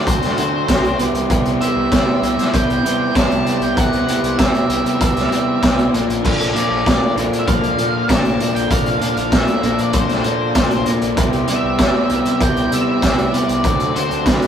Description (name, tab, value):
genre	indie rock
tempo	97 BPM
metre	4/4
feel	straight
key	unclear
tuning	A4 = 439 Hz
part	octave-fuzz lead guitar	melody	0.0-14.5 s	B4 to A5	-23 LUFS	equal	distortion
part	sweeping resonant pad	sustained chords	0.0-14.5 s	Bb3 to D6	-35 LUFS	left 1 dB	none
part	electric guitar through a small old amp	riff	0.0-14.5 s	Bb2 to A4	-19 LUFS	right 1 dB	none
part	raw garage guitar	riff	0.0-14.5 s	E3 to Bb4	-24 LUFS	left 4 dB	overdrive
part	growling fingered electric bass	bass	0.0-14.4 s	Bb1 to D3	-27 LUFS	equal	overdrive
part	raw garage drum kit	drums	0.1-14.5 s	crash cymbal, hi-hat, kick drum, snare drum	-18 LUFS	equal	none
room	moderate small room reverb, RT60 0.6 s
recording	rough rehearsal-room recording, tube saturation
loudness	-14 LUFS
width	side -8 dB against mid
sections	0.0-14.5 A section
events	none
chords	0.0 D7; 1.0 Cmaj7; 5.9 Bbmaj7; 11.2 Cmaj7; 13.6 D7